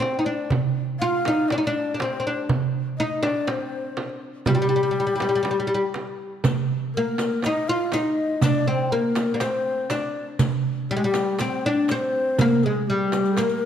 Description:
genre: Arabic maqam ensemble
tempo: 121 BPM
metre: 4/4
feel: straight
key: G maqam kurd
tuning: A4 = 440 Hz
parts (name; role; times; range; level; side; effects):
- oud; melody; 0.0-13.7 s; G3 to F4; -24 LUFS; left 1 dB; none
- breathy mellow low ney; second line; 0.0-13.7 s; F4 to F5; -27 LUFS; left 4 dB; none
- darbuka; percussion; 0.0-13.6 s; none; -26 LUFS; right 4 dB; none
- frame drum; percussion; 0.0-13.5 s; none; -30 LUFS; right 4 dB; none
- riq; percussion; 6.4-13.6 s; none; -35 LUFS; left 5 dB; none
room: moderate concert hall reverb, RT60 2.2 s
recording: dark, warm production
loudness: -21 LUFS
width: side -9 dB against mid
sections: 0.0-6.4 A section; 6.4-13.7 B section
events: none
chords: none

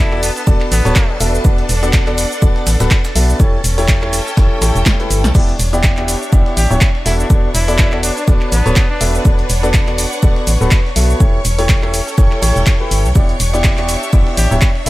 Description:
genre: piano house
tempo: 123 BPM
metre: 4/4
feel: swing 56% on 16ths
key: E dorian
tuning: A4 = 444 Hz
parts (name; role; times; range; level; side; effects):
- clear trumpet; melody; 0.0-1.2, 6.6-9.1, 14.4-14.9 s; B3 to G4; -25 LUFS; equal; dub echo
- string machine, violins; sustained chords; 0.0-14.9 s; A4 to C#6; -28 LUFS; equal; ensemble chorus, sidechain pumping
- clear upright piano; riff; 0.0-14.9 s; A3 to E5; -20 LUFS; left 1 dB; sidechain pumping, dub echo
- organ-like FM bass; bass; 0.0-14.9 s; D1 to B1; -16 LUFS; equal; sidechain pumping
- bright studio string section; texture; 0.0-14.9 s; C#4 to A5; -25 LUFS; equal; sidechain pumping
- punchy analog drum machine; drums; 0.1-14.9 s; crash cymbal, handclaps, hi-hat, shaker, snare drum; -20 LUFS; equal; none
- breakbeat sampler-style drum kit; drums; 0.2-14.9 s; hi-hat, shaker, snare drum; -29 LUFS; right 2 dB; high-pass filter on snare, high-pass filter on perc, high-pass filter on hats
- electronic kick drum; drums; 0.5-14.7 s; none; -12 LUFS; equal; none
room: little or no reverb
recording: none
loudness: -11 LUFS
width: side -18 dB against mid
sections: 0.0-14.9 A section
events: drum fill 4.9-5.4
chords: 0.0 Bm7/E; 1.2 D6/E; 3.4 A7/E; 5.4 Em7; 7.1 Bm7/E; 11.2 A7/E; 13.2 Em7

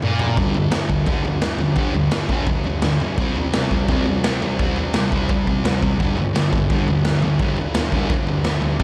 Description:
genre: garage rock duo or trio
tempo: 171 BPM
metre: 4/4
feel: straight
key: unclear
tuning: A4 = 439 Hz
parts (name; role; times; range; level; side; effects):
- thick fuzz guitar; riff; 0.0-8.8 s; G2 to C4; -23 LUFS; equal; distortion
- raw garage drum kit; drums; 0.0-8.8 s; kick drum, snare drum, toms; -23 LUFS; equal; none
room: light reverb, small room ambience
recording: cassette tape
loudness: -20 LUFS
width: mono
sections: 0.4-8.8 A section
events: drum fill 0.0-0.4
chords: 0.4 G5; 3.2 C5; 6.0 G5

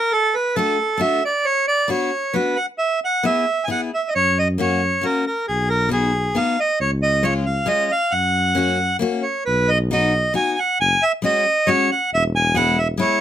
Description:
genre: alpine folk, alpine dance band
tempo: 135 BPM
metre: 3/4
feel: straight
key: F# major, B major from 9.5 s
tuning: A4 = 435 Hz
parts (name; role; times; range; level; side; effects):
- accordion; melody; 0.0-13.2 s; G#4 to G#5; -18 LUFS; right 2 dB; none
- picked steel-string acoustic guitar; accompaniment; 0.6-13.2 s; G#3 to G#4; -22 LUFS; left 5 dB; none
- dark tuba; bass; 4.2-13.0 s; E1 to F#2; -22 LUFS; equal; none
room: light reverb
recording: close, detailed microphones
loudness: -17 LUFS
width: side -10 dB against mid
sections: 0.0-9.5 A section; 9.5-13.2 B section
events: none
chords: 0.1 D; 1.4 Bmadd9; 2.8 E; 4.1 F#; 5.5 B; 6.8 C#; 8.1 F#; 9.5 B; 10.8 F#sus2; 12.1 E

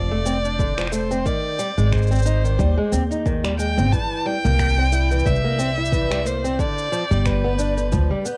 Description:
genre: folktronica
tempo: 90 BPM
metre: 4/4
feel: swing 56% on 16ths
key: unclear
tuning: A4 = 440 Hz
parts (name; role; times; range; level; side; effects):
- warm violin; melody; 0.0-8.3 s; B4 to A5; -28 LUFS; equal; cassette tape
- fingerpicked old ladder-braced acoustic guitar; arpeggios; 0.0-8.4 s; D3 to E4; -27 LUFS; equal; cassette tape
- upright bass; bass; 0.0-8.1 s; F1 to Eb2; -23 LUFS; equal; none
- backwards swelling texture; texture; 0.2-8.4 s; D5 to G6; -38 LUFS; equal; built-in reverb, cassette tape
- electronic shaker and finger snaps; drums; 0.3-8.4 s; none; -35 LUFS; equal; cassette tape
- electronic kick drum; drums; 0.6-8.1 s; none; -27 LUFS; equal; cassette tape
room: little or no reverb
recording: home recording on cassette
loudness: -21 LUFS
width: mono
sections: 0.0-8.4 A section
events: none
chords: 0.0 F6; 1.3 Abmaj7; 3.9 C7; 6.6 G7

